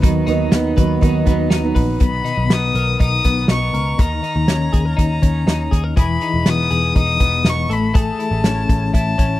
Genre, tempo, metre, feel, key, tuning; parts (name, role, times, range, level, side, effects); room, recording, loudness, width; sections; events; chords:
jangly indie pop; 121 BPM; 4/4; straight; B major; A4 = 440 Hz
picked steel-string acoustic guitar; accompaniment; 0.0-2.0 s; D#3 to D#4; -19 LUFS; right 9 dB
twelve-string electric guitar; arpeggios; 0.0-9.4 s; B2 to B4; -22 LUFS; left 4 dB; harmonic tremolo
vintage muted picked electric bass; bass; 0.0-9.4 s; E1 to D#2; -20 LUFS; equal
loose indie drum kit; drums; 0.0-9.3 s; hi-hat, kick drum, snare drum; -16 LUFS; equal
warm violin; melody; 2.0-9.4 s; A5 to D#6; -22 LUFS; left 3 dB
little or no reverb; dry, close 1970s-style studio recording; -14 LUFS; side -15 dB against mid
0.0-2.0 A section; 2.0-9.4 B section
0.0 B; 2.0 Bmaj7; 4.0 D#5; 6.0 Emaj7; 7.7 Amaj7